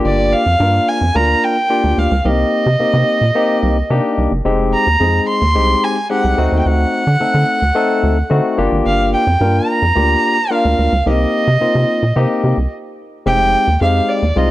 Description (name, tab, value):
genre	early-eighties boogie funk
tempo	109 BPM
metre	4/4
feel	straight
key	F dorian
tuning	A4 = 439 Hz
part	barky tine electric piano	accompaniment	0.0-14.5 s	Ab3 to Bb4	-18 LUFS	left 3 dB	overdrive
part	rubbery square bass	bass	0.0-14.5 s	F1 to D3	-15 LUFS	equal	none
part	dark fiddle	melody	0.1-14.5 s	D5 to C6	-16 LUFS	right 1 dB	slapback echo
room	light reverb, small room ambience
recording	none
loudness	-12 LUFS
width	side -15 dB against mid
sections	0.0-13.3 A section; 13.3-14.5 B section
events	stop 12.7-13.3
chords	0.0 Gm7; 2.3 Cm7; 4.5 Fm7; 6.4 D7b9; 8.6 Gm7; 11.1 Cm7; 13.3 Fm9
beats	| 0.05 0.60 1.15 1.70 | 2.25 2.80 3.35 3.90 | 4.45 5.00 5.55 6.11 | 6.66 7.21 7.76 8.31 | 8.86 9.41 9.96 10.51 | 11.06 11.61 12.16 12.71 | 13.26 13.81 14.36